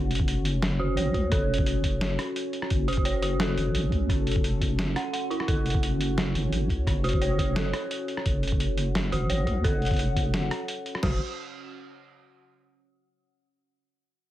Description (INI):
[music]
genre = half-time drum and bass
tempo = 173 BPM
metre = 4/4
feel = half-time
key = F# minor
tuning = A4 = 440 Hz
[part]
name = dark analog pad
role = sustained chords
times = 0.0-12.4 s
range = C#4 to F#5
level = -33 LUFS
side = equal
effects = chorus, phaser, sidechain pumping
[part]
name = dark detuned synth bell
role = arpeggios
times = 0.0-11.2 s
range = E4 to F#5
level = -33 LUFS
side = right 2 dB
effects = chorus, vintage 12-bit sampler grit, dub echo
[part]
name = deep soft wobble bass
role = bass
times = 0.0-11.2 s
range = F#1 to C#2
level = -27 LUFS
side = equal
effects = chorus
[part]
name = boom bap sampler-style drum kit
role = drums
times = 0.1-11.0 s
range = hi-hat, rim click, snare drum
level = -32 LUFS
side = equal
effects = none
[part]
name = boom bap sampler-style drum kit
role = drums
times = 0.2-11.1 s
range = crash cymbal, kick drum, snare drum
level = -27 LUFS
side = equal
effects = none
[sound]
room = light reverb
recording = none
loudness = -24 LUFS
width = side -14 dB against mid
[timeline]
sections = 0.0-11.0 A section; 11.0-12.4 B section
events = drop 0.0-11.0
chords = 0.0 F#5